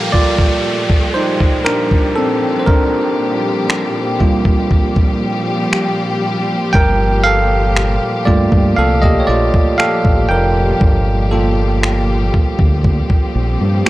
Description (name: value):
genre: contemporary R&B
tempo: 59 BPM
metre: 4/4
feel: straight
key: G minor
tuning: A4 = 440 Hz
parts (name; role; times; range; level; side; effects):
- bell-like tine electric piano; accompaniment; 0.0-13.9 s; G3 to G5; -16 LUFS; right 1 dB; none
- warm studio string section; sustained chords; 0.0-13.9 s; Bb2 to G4; -20 LUFS; left 1 dB; sidechain pumping
- downlifter and swell; sound effects; 0.0-13.9 s; none; -26 LUFS; equal; none
- dusty soul sampler-style drum kit; drums; 0.1-13.9 s; finger snaps, kick drum; -14 LUFS; equal; none
- deep dub fingered electric bass; bass; 6.7-13.8 s; F1 to G2; -16 LUFS; equal; none
room: little or no reverb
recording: dry, gritty hardware recording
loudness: -12 LUFS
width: side -16 dB against mid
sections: 0.0-13.9 A section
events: tine electric piano solo 0.0-13.9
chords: 0.0 Gm9